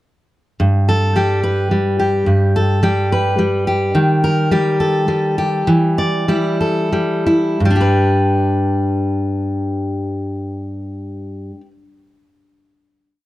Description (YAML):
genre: indie folk with a building arrangement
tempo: 86-108 BPM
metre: 3/4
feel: straight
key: G major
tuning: A4 = 440 Hz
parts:
  - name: fingerpicked steel-string acoustic guitar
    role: solo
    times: 0.6-11.7 s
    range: G2 to D5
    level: -14 LUFS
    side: equal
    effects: none
room: studio reverb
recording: dry, close 1970s-style studio recording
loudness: -14 LUFS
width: side -16 dB against mid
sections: 0.6-7.6 verse; 7.6-11.8 final chord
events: slowing down 4.0-7.6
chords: 0.6 G; 4.0 Eb; 5.7 Emadd11; 7.6 G